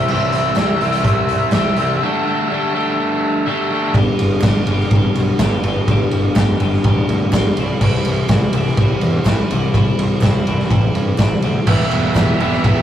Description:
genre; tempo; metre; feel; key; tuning
indie rock; 124 BPM; 4/4; straight; G major; A4 = 441 Hz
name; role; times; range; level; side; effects
biting overdriven guitar; riff; 0.0-4.0, 11.7-12.8 s; C3 to G4; -17 LUFS; equal; none
twelve-string electric guitar; riff; 0.0-12.8 s; E2 to G4; -20 LUFS; left 1 dB; none
fuzz picked electric bass; bass; 0.0-12.8 s; E1 to G2; -22 LUFS; equal; overdrive
raw garage drum kit; drums; 0.1-12.8 s; crash cymbal, hi-hat, kick drum, ride cymbal, snare drum; -17 LUFS; equal; none
group handclap; percussion; 0.6-12.3 s; none; -36 LUFS; right 2 dB; none
room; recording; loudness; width
moderate booth ambience, RT60 0.1 s; rough rehearsal-room recording, warm saturation; -14 LUFS; side -10 dB against mid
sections
0.0-4.0 A section; 4.0-12.8 B section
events
break 2.0-4.0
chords
0.0 C; 2.0 Dsus4; 4.0 G; 7.6 C; 11.7 Em

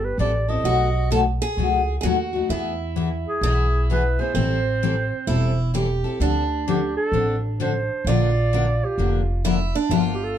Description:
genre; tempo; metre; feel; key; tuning
acoustic string swing (jazz manouche); 130 BPM; 4/4; swing 64% on 8ths; A minor, D minor from 6.2 s; A4 = 440 Hz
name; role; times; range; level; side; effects
breathy clarinet; melody; 0.0-10.4 s; G4 to D#5; -25 LUFS; right 2 dB; plate reverb
picked acoustic archtop guitar; second line; 0.0-10.4 s; C4 to A4; -28 LUFS; right 5 dB; none
upright bass; bass; 0.0-10.4 s; E1 to E2; -23 LUFS; equal; none
picked steel-string acoustic guitar; accompaniment; 0.2-10.1 s; B2 to Bb4; -24 LUFS; left 7 dB; none
room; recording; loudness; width
light reverb; dark, warm production; -19 LUFS; side -10 dB against mid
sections
0.0-6.2 A section; 6.2-10.4 B section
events
none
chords
0.0 Am7; 0.7 B7; 2.5 E; 4.4 Am7; 6.2 Dm7; 8.1 Bb

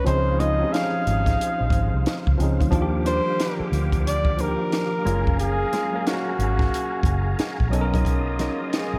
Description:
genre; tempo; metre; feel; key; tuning
R&B, neo-soul; 90 BPM; 4/4; swing 63% on 16ths; Eb major; A4 = 440 Hz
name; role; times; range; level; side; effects
warm flugelhorn; melody; 0.0-9.0 s; Gb4 to F5; -29 LUFS; equal; diffuse ambient delay
tine electric piano; accompaniment; 0.0-9.0 s; Eb3 to F5; -30 LUFS; equal; overdrive
tonewheel organ; sustained chords; 0.0-9.0 s; G4 to D#6; -37 LUFS; equal; slow rotary speaker, chorus vibrato
mellow horn section; stabs; 0.1-9.0 s; C#3 to F5; -39 LUFS; equal; none
vintage muted fingered electric bass; bass; 0.1-9.0 s; Gb1 to Eb2; -26 LUFS; equal; none
compact cocktail drum kit; drums; 0.1-8.9 s; hi-hat, kick drum, snare drum; -28 LUFS; equal; none
hollow-body jazz guitar; second line; 0.4-8.7 s; F#3 to C5; -37 LUFS; equal; none
room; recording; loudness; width
moderate church reverb, RT60 3.8 s; dreamy mix soaked in reverb; -23 LUFS; mono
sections
0.0-9.0 A section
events
none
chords
0.1 Dbmaj9; 2.7 Ebmaj9; 5.1 Gbmaj9; 7.7 Bmaj9

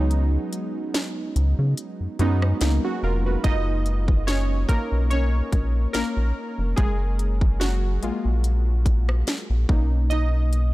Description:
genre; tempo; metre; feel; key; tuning
contemporary R&B; 72 BPM; 4/4; swing 54% on 16ths; F# major; A4 = 440 Hz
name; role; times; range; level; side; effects
warm analog keys; accompaniment; 0.0-10.7 s; F#3 to D#5; -27 LUFS; right 1 dB; chorus
rubbery square bass; bass; 0.0-10.7 s; E#1 to C#3; -21 LUFS; equal; none
trap drum kit; drums; 0.1-10.7 s; hi-hat, kick drum, rim click, snare drum; -23 LUFS; equal; none
room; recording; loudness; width
digital ambience; dark, warm production; -20 LUFS; side -18 dB against mid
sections
0.0-3.4 A section; 3.4-10.7 B section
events
break 0.1-3.4; synth keys solo 3.4-10.7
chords
0.0 C#9sus4; 9.7 Bmaj7

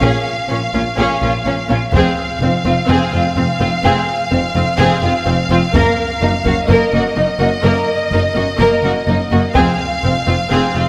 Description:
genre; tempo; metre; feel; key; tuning
cinematic, epic orchestral film score; 126 BPM; 4/4; straight; F phrygian; A4 = 436 Hz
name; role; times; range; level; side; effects
warm symphonic violin section; melody; 0.0-10.9 s; Eb5 to F5; -22 LUFS; equal; none
rich symphonic violin section; second line; 0.0-10.8 s; C4 to Bb4; -22 LUFS; equal; none
rich symphonic viola section; accompaniment; 0.0-10.8 s; Bb3 to Db4; -22 LUFS; equal; none
rich studio cello section; bass; 0.0-10.8 s; F2 to Bb2; -22 LUFS; equal; none
warm studio double bass section; bass; 0.0-10.8 s; F1 to Bb1; -22 LUFS; equal; none
solo taiko drums; drums; 1.9-2.8, 5.7-6.7, 9.6-10.5 s; none; -24 LUFS; equal; none
room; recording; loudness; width
wet concert hall reverb, RT60 2.3 s; none; -15 LUFS; mono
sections
0.0-10.9 A section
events
build-up 0.0-10.9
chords
0.0 Bbm7; 1.9 Fm; 5.7 Ebm/Gb; 9.6 Fm

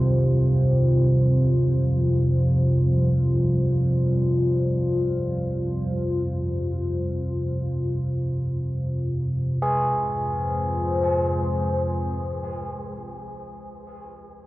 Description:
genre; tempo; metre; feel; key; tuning
dark ambient drone; free time; none; none; F minor; A4 = 440 Hz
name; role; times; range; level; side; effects
dark analog pad; sustained chords; 0.0-13.2 s; G3 to C5; -28 LUFS; left 2 dB; chorus, phaser
carillon bells; arpeggios; 0.0-2.6, 9.6-12.9 s; C3 to Ab4; -31 LUFS; equal; tape echo
deep rumbling drone; drone; 0.0-12.9 s; F2 to C3; -22 LUFS; right 1 dB; built-in reverb
room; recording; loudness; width
moderate huge ambient reverb, RT60 7.0 s; worn, warbling old tape, cassette tape, warbly pitch drift; -21 LUFS; side -18 dB against mid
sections
0.0-9.6 A section; 9.6-13.4 B section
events
none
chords
0.0 Fsus2; 9.6 Fm

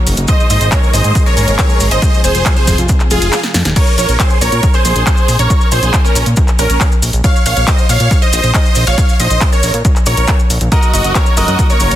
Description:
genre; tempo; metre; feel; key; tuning
uplifting trance; 138 BPM; 4/4; straight; Bb minor; A4 = 441 Hz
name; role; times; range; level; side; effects
dark studio string section; sustained chords; 0.0-3.7, 10.7-12.0 s; Bb2 to Ab4; -23 LUFS; equal; sidechain pumping
fat analog bass; bass; 0.1-12.0 s; Eb1 to Bb2; -14 LUFS; equal; sidechain pumping
big-room dance drum kit; drums; 0.1-12.0 s; crash cymbal, handclaps, hi-hat, snare drum; -19 LUFS; equal; sidechain pumping on hats, sidechain pumping on cymbals
maracas; percussion; 0.1-12.0 s; none; -22 LUFS; left 2 dB; none
big supersaw lead; melody; 0.3-12.0 s; Db4 to F5; -16 LUFS; right 1 dB; phaser, sidechain pumping, tape echo
wide unison pluck; second line; 0.3-12.0 s; Ab4 to F5; -22 LUFS; equal; sidechain pumping, tape echo
electronic kick drum; drums; 0.3-11.7 s; none; -12 LUFS; equal; overdrive
clear grand piano; second line; 10.7-11.9 s; Bb4 to Bb5; -22 LUFS; right 2 dB; tape echo
room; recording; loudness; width
little or no reverb; dense, heavily limited modern master; -9 LUFS; side -12 dB against mid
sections
0.0-3.8 A section; 3.8-12.0 A section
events
drop 0.0-3.8, 3.8-12.0; kick drops out 3.3-3.8; drum fill 3.3-3.8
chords
0.3 Absus2; 2.0 Fm; 3.8 Bbm; 10.7 Gb6

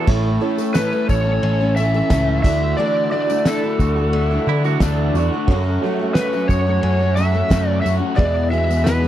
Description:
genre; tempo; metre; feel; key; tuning
folk rock and heartland rock; 89 BPM; 4/4; straight; A major; A4 = 440 Hz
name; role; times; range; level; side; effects
pedal steel guitar; second line; 0.0-0.1, 4.5-5.5 s; D4 to F#4; -26 LUFS; right 14 dB; none
picked twelve-string acoustic guitar; accompaniment; 0.0-9.1 s; E2 to A4; -24 LUFS; left 3 dB; none
raw garage guitar; riff; 0.0-9.1 s; E2 to A4; -24 LUFS; right 1 dB; overdrive, phaser
reed electric piano; accompaniment; 0.1-9.1 s; E4 to E5; -28 LUFS; right 12 dB; overdrive
tonewheel organ; sustained chords; 0.1-9.1 s; G#4 to E6; -34 LUFS; left 1 dB; slow rotary speaker, overdrive
picked electric bass; bass; 0.1-9.1 s; A1 to D3; -19 LUFS; equal; none
cloth-damped thuddy drum kit; drums; 0.1-9.0 s; crash cymbal, kick drum, ride cymbal, snare drum; -17 LUFS; equal; none
tambourine; percussion; 0.6-9.1 s; none; -40 LUFS; left 21 dB; none
overdriven slide guitar; melody; 0.7-9.1 s; A4 to E5; -21 LUFS; equal; none
room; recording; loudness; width
little or no reverb; dry, close 1970s-style studio recording; -16 LUFS; side -12 dB against mid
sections
0.1-9.1 A section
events
none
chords
0.1 A; 2.4 Dadd9; 5.5 F#m; 8.2 Eadd9

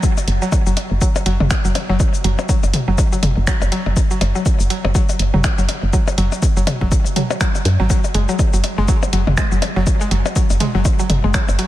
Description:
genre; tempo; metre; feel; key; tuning
minimal techno; 122 BPM; 4/4; swing 58% on 16ths; unclear; A4 = 442 Hz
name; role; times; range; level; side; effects
mallet-like synth pluck; riff; 0.0-11.7 s; F#3 to G#3; -23 LUFS; equal; chorus, sidechain pumping, tape echo
electronic kick drum; drums; 0.0-11.5 s; none; -17 LUFS; equal; overdrive
techno drum kit; drums; 0.0-11.7 s; finger snaps, hi-hat, shaker; -25 LUFS; left 1 dB; none
electronic percussion blips and toms; percussion; 0.2-11.6 s; none; -25 LUFS; left 3 dB; ping-pong delay
woody FM bass; bass; 0.3-11.6 s; F#1 to F#2; -17 LUFS; equal; sidechain pumping
room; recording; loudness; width
light reverb, digital ambience; none; -14 LUFS; side -14 dB against mid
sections
0.0-11.7 A section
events
none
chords
0.0 F#5

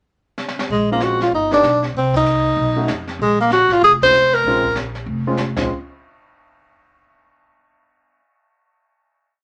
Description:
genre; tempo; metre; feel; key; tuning
jazz, small-group swing and bop; 192 BPM; 4/4; swing 61% on 8ths; Bb minor; A4 = 440 Hz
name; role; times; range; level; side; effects
jazz brush drum kit; drums; 0.4-5.6 s; brushed snare drum, crash cymbal, hi-hat, kick drum, ride cymbal, snare drum; -31 LUFS; equal; none
warm tenor saxophone; melody; 0.7-4.8 s; Ab3 to C5; -16 LUFS; equal; none
upright bass; bass; 0.7-5.7 s; F1 to F2; -27 LUFS; equal; none
warm grand piano; accompaniment; 0.9-5.7 s; Ab3 to G4; -26 LUFS; equal; none
room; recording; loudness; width
moderate studio ambience, RT60 0.5 s; none; -17 LUFS; mono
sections
0.0-0.7 pickup bar; 0.7-5.7 A section; 5.7-6.9 final hit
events
drum fill 0.4-0.7; band accent 2.1, 4.0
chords
0.0 N.C.; 0.7 Bbm7; 1.3 G; 1.9 Cm; 2.6 B9; 3.2 Bbm7; 5.7 N.C.

